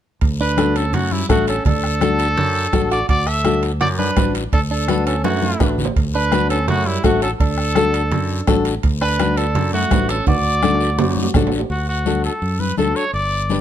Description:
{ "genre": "latin, cumbia", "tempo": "167 BPM", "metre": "4/4", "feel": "straight", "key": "D major", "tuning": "A4 = 439 Hz", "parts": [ { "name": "fingered electric bass", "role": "bass", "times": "0.2-13.6 s", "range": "G1 to F#2", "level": "-22 LUFS", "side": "equal", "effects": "none" }, { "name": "bombo", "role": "percussion", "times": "0.2-11.5 s", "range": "none", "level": "-19 LUFS", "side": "right 2 dB", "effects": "none" }, { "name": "guiro", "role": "percussion", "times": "0.2-13.6 s", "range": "none", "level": "-32 LUFS", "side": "left 6 dB", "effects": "none" }, { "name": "timbales", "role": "percussion", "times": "0.2-11.7 s", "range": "none", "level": "-28 LUFS", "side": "right 7 dB", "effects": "none" }, { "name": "clear trumpet", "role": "melody", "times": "0.4-13.6 s", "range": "E4 to E5", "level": "-22 LUFS", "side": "equal", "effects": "plate reverb" }, { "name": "direct-recorded clean electric guitar", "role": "second line", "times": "0.4-11.3 s", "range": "G3 to A4", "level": "-26 LUFS", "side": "right 6 dB", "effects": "none" }, { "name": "flamenco guitar", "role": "accompaniment", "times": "0.6-13.6 s", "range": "D4 to B4", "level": "-20 LUFS", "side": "left 4 dB", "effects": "none" }, { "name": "congas", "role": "percussion", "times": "0.6-13.6 s", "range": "none", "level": "-24 LUFS", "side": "left 3 dB", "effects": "none" } ], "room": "light reverb", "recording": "close, detailed microphones", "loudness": "-15 LUFS", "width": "side -10 dB against mid", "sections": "0.2-11.7 A section; 11.7-13.6 B section", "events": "drum fill 5.2-6.0, 10.3-11.7", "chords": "0.2 D" }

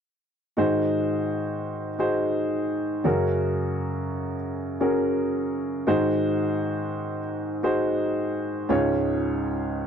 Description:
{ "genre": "pop", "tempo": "85 BPM", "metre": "4/4", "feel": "straight", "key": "Ab mixolydian", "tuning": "A4 = 440 Hz", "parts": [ { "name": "clear baby grand piano", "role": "accompaniment", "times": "0.6-9.9 s", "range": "Db2 to Db5", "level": "-23 LUFS", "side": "equal", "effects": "none" } ], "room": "light reverb", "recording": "dry, close 1970s-style studio recording", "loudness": "-23 LUFS", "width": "side -7 dB against mid", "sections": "0.6-9.9 A section", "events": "none", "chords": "0.6 Ab7; 3.0 Gbadd9; 5.9 Ab7; 8.7 Db" }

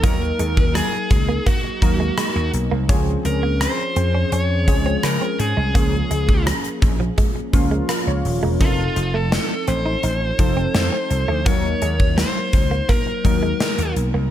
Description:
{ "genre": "1980s-style pop", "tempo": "84 BPM", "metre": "4/4", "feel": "straight", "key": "unclear", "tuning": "A4 = 445 Hz", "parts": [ { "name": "high-gain lead guitar", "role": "melody", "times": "0.0-13.9 s", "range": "F4 to Db5", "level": "-25 LUFS", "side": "left 1 dB", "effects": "distortion" }, { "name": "warm analog keys", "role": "accompaniment", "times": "0.0-14.3 s", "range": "F3 to F5", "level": "-25 LUFS", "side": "left 1 dB", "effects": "chorus" }, { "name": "direct-recorded clean electric guitar", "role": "riff", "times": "0.0-14.3 s", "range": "F3 to Eb4", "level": "-29 LUFS", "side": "right 5 dB", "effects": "analog chorus" }, { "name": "vintage slap bass", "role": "bass", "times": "0.0-14.3 s", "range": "Eb1 to Db3", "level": "-21 LUFS", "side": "equal", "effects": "none" }, { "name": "gated 80s drum kit", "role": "drums", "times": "0.0-14.1 s", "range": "hi-hat, kick drum, rim click, snare drum", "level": "-20 LUFS", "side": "equal", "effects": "gated reverb" } ], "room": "little or no reverb", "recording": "none", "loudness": "-17 LUFS", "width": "side -11 dB against mid", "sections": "0.0-14.3 A section", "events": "none", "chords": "0.0 Ebm; 2.9 Dbmaj7; 5.8 Bbm7; 8.6 F7; 11.5 Ebm" }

